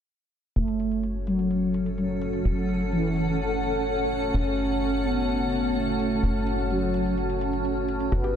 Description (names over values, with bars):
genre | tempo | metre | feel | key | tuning
melodic techno | 127 BPM | 4/4 | straight | F# minor | A4 = 440 Hz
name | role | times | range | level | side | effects
expressive portamento lead | melody | 0.6-8.4 s | E3 to C#4 | -27 LUFS | equal | chorus, dub echo
dark analog pad | sustained chords | 0.6-8.4 s | A3 to C#5 | -32 LUFS | left 2 dB | chorus, vintage 12-bit sampler grit
tight sequencer bass | bass | 0.6-8.4 s | F#1 to G1 | -30 LUFS | equal | none
electronic hi-hat | drums | 0.6-8.3 s | none | -59 LUFS | right 1 dB | none
granular cloud pad | texture | 1.4-8.4 s | C#4 to A5 | -29 LUFS | right 1 dB | built-in reverb
woody wave-folded pluck | arpeggios | 8.1-8.3 s | F#4 to G4 | -32 LUFS | right 2 dB | chorus
room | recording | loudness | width
light reverb, digital ambience | dense, heavily limited modern master | -23 LUFS | side -8 dB against mid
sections
0.6-8.4 A section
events
filter sweep on analog synth lead 0.6-8.4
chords
0.6 F#m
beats
| 0.56 1.03 1.51 1.98 | 2.45 2.92 3.40 3.87 | 4.34 4.81 5.29 5.76 | 6.23 6.70 7.18 7.65 | 8.12